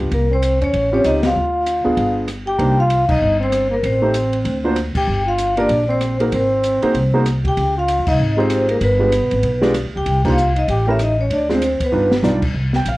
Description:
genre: jazz, small-group swing and bop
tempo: 193 BPM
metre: 4/4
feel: swing 61% on 8ths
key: C minor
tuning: A4 = 442 Hz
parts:
  - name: warm concert grand piano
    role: accompaniment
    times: 0.0-13.0 s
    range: G3 to G5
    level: -19 LUFS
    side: right 1 dB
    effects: none
  - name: upright bass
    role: bass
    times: 0.0-13.0 s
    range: G1 to E2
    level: -20 LUFS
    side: equal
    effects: none
  - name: open jazz drum kit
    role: drums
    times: 0.0-12.9 s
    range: crash cymbal, hi-hat, kick drum, ride cymbal, rim click, snare drum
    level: -26 LUFS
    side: equal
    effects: none
  - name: vibraphone with medium hard mallets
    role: melody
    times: 0.1-12.2 s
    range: Bb4 to G5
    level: -20 LUFS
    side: left 1 dB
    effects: none
  - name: warm trombone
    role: second line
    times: 0.1-12.2 s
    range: Bb3 to G4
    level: -23 LUFS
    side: right 1 dB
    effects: none
room: light reverb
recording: worn, warbling old tape, cassette tape, warbly pitch drift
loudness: -15 LUFS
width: side -19 dB against mid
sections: 0.0-2.6 A section; 2.6-12.5 B section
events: band accent 1.2, 3.1, 4.9, 8.0, 10.2; drum fill 11.9-12.2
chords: 0.1 C7b9; 0.7 A7alt; 1.4 Ddim; 2.0 G7b9; 2.6 Cm7; 3.8 Am7b5; 4.5 D7alt; 5.1 Gm7; 6.3 Ab7; 7.6 Dbmaj9#11; 8.8 G7b9; 10.1 Cm7; 10.7 A7b9; 11.3 Dm7b5; 11.9 G7b13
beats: | 0.11 0.42 0.73 1.04 | 1.35 1.66 1.97 2.28 | 2.59 2.90 3.21 3.52 | 3.83 4.14 4.46 4.77 | 5.08 5.39 5.70 6.01 | 6.32 6.63 6.94 7.25 | 7.56 7.88 8.19 8.50 | 8.81 9.12 9.43 9.74 | 10.05 10.37 10.68 10.99 | 11.30 11.61 11.92 12.23 | 12.55 12.86

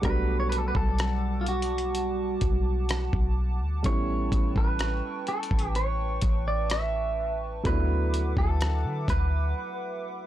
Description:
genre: contemporary R&B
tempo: 63 BPM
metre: 4/4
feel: straight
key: unclear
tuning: A4 = 441 Hz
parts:
  - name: clean electric guitar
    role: melody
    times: 0.0-10.3 s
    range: E#4 to E5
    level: -31 LUFS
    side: right 1 dB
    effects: tape echo
  - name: warm grand piano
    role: accompaniment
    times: 0.0-10.3 s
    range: F#3 to F#4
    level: -35 LUFS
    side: right 2 dB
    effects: none
  - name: hollow soft pad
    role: sustained chords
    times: 0.0-10.3 s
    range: G3 to D6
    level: -37 LUFS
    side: right 1 dB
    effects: chorus
  - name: soft 808-style bass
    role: bass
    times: 0.0-9.5 s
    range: A1 to D3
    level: -28 LUFS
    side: equal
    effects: none
  - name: dusty soul sampler-style drum kit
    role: drums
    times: 0.0-9.3 s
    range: hi-hat, kick drum, rim click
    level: -28 LUFS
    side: equal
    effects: none
room: digital ambience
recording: dark, warm production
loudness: -24 LUFS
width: side -13 dB against mid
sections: 0.0-10.3 A section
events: break 9.6-10.3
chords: 0.0 Gmaj9/B; 3.8 A9; 7.7 D69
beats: | 0.04 0.99 1.94 2.89 | 3.84 4.80 5.75 6.70 | 7.65 8.61 9.56

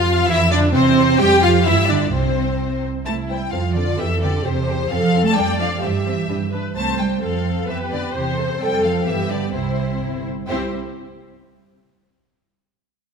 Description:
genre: quick classical-period movement for string orchestra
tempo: 130 BPM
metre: 2/4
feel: straight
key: C major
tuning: A4 = 443 Hz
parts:
  - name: warm studio violin section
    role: melody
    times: 0.0-10.7 s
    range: C5 to A5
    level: -23 LUFS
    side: left 6 dB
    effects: none
  - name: warm studio violin section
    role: second line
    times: 0.0-10.8 s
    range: B3 to C5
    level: -26 LUFS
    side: left 3 dB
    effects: none
  - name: warm studio viola section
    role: accompaniment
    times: 0.0-10.8 s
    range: C4 to D5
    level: -22 LUFS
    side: right 2 dB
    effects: none
  - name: rich studio double bass section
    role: bass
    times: 0.0-10.8 s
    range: G1 to G2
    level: -23 LUFS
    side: right 3 dB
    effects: none
  - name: warm studio cello section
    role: bass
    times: 0.0-10.7 s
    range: C3 to C4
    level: -24 LUFS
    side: right 4 dB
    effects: none
room: wet scoring stage reverb, RT60 1.7 s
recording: none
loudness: -17 LUFS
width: side -6 dB against mid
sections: 0.0-3.1 A section; 3.1-10.5 B section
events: none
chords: 0.3 Dmadd9/F; 0.7 C/E; 1.2 Fsus2; 1.7 G5; 2.1 N.C.; 3.1 C; 3.5 N.C.; 4.0 G7/F (rootless); 4.5 C/E; 4.9 F; 5.4 Dm/F; 5.8 C/G; 6.3 G; 6.8 C5; 7.2 F; 7.7 G7/F; 8.1 C/E; 8.6 F; 9.1 G; 9.5 C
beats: | 0.29 0.74 | 1.20 1.66 | 2.13 2.60 | 3.07 3.53 | 4.00 4.45 | 4.91 5.36 | 5.82 6.29 | 6.76 7.23 | 7.69 8.14 | 8.60 9.06 | 9.54 10.01 | 10.49

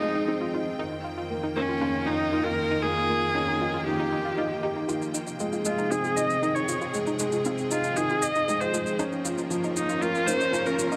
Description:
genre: piano and strings electronica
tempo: 117 BPM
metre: 4/4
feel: straight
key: F minor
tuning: A4 = 439 Hz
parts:
  - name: clear viola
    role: melody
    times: 0.0-11.0 s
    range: Db4 to Eb5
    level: -30 LUFS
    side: equal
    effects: low-pass filter, delay
  - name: bright studio string section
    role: sustained chords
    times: 0.0-11.0 s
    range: F2 to G5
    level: -35 LUFS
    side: equal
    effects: none
  - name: felt-muted upright piano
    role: riff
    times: 0.0-11.0 s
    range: Eb3 to G4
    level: -32 LUFS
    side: equal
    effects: delay
  - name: analog pluck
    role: arpeggios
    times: 0.2-11.0 s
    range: Eb4 to F4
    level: -37 LUFS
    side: equal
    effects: chorus, delay
  - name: shaker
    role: drums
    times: 4.9-11.0 s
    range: none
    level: -37 LUFS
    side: equal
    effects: overdrive
room: moderate huge ambient reverb, RT60 4.5 s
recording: none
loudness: -27 LUFS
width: mono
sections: 0.0-4.9 A section; 4.9-11.0 B section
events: build-up 4.9-11.0; filter sweep on viola 4.9-11.0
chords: 0.0 Fm7; 0.8 Eb7/F; 4.9 Fm7; 9.0 Bbm7/F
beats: 0.28 | 0.79 1.30 1.81 2.33 | 2.84 3.35 3.87 4.38 | 4.89 5.41 5.92 6.43 | 6.94 7.46 7.97 8.48 | 8.99 9.51 10.02 10.53

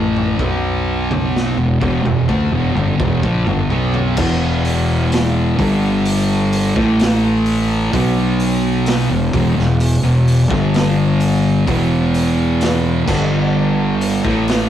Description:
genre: stoner and doom metal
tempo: 64 BPM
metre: 4/4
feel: straight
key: E minor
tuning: A4 = 443 Hz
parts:
  - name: thick fuzz guitar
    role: riff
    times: 0.0-14.7 s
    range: E2 to B3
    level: -19 LUFS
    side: left 5 dB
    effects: distortion
  - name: thick fuzz guitar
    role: riff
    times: 0.0-14.7 s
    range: E2 to B3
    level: -19 LUFS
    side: right 4 dB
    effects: distortion
  - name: fuzz fingered electric bass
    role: bass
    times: 0.0-14.7 s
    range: E1 to D2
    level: -19 LUFS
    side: equal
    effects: overdrive
  - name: raw garage drum kit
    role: drums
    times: 0.2-14.7 s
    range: crash cymbal, hi-hat, kick drum, snare drum, toms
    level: -22 LUFS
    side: equal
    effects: none
room: moderate stone room reverb, RT60 1.1 s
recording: rough rehearsal-room recording, warm saturation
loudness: -14 LUFS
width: side -10 dB against mid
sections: 0.0-4.2 A section; 4.2-14.7 B section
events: drum fill 3.7-4.2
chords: 0.4 B5; 1.6 Em; 4.2 E5; 5.6 G5; 6.8 A5; 7.9 B5; 9.1 E5; 10.5 G5; 11.7 E5; 13.1 G5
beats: | 0.39 1.34 2.28 3.23 | 4.17 5.11 6.05 6.99 | 7.92 8.86 9.79 10.73 | 11.67 12.60 13.54 14.48

